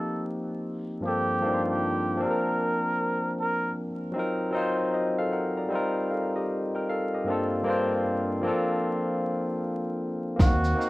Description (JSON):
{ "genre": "lo-fi hip hop", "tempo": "77 BPM", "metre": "4/4", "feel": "swing 64% on 16ths", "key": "Bb major", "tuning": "A4 = 440 Hz", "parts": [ { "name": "trumpet with cup mute", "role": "melody", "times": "0.0-3.7, 10.4-10.9 s", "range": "Gb4 to Bb4", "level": "-29 LUFS", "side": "right 1 dB", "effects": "none" }, { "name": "barky tine electric piano", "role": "accompaniment", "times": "0.0-10.9 s", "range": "G2 to Bb5", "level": "-26 LUFS", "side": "left 1 dB", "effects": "overdrive" }, { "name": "upright bass", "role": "bass", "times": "10.4-10.7 s", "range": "Eb2", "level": "-26 LUFS", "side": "equal", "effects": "none" }, { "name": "lo-fi sampler-style drum kit", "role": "drums", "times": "10.4-10.9 s", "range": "hi-hat, kick drum, shaker", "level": "-22 LUFS", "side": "equal", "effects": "overdrive" } ], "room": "light reverb", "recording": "rough home demo mix, vinyl crackle", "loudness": "-25 LUFS", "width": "side -19 dB against mid", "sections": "0.0-10.9 A section", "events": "none", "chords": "0.0 F7sus4; 1.0 Gm11; 2.2 Bb/F; 4.2 Ebm6; 5.7 F7sus4; 8.4 Bbmaj7/F; 10.4 Ebm6" }